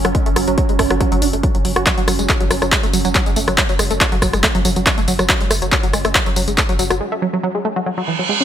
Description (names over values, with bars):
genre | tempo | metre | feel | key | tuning
driving peak-time techno | 140 BPM | 4/4 | straight | unclear | A4 = 440 Hz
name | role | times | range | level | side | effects
tight sequenced synth | riff | 0.0-8.4 s | E3 to F#4 | -20 LUFS | equal | chorus, sidechain pumping, digital delay
warm sub bass | bass | 0.0-7.0 s | F#1 | -24 LUFS | equal | tube saturation, sidechain pumping, low-pass filter
deep dark ambient pad | drone | 0.0-7.0 s | F#3 to C#4 | -26 LUFS | right 5 dB | chorus, built-in reverb, sidechain pumping
punchy analog drum machine | drums | 0.0-7.0 s | handclaps, hi-hat, rim click, tambourine | -18 LUFS | equal | overdrive, sidechain pumping on hats, sidechain pumping on perc
electronic kick drum | drums | 0.1-6.7 s | none | -19 LUFS | equal | none
reverse cymbal | sound effects | 8.0-8.4 s | none | -18 LUFS | right 7 dB | none
room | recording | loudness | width
light reverb, digital ambience | bright 1980s-style digital production | -14 LUFS | side -10 dB against mid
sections
0.0-8.4 A section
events
break 7.0-8.4; reverse cymbal 8.0-8.4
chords
0.0 F#5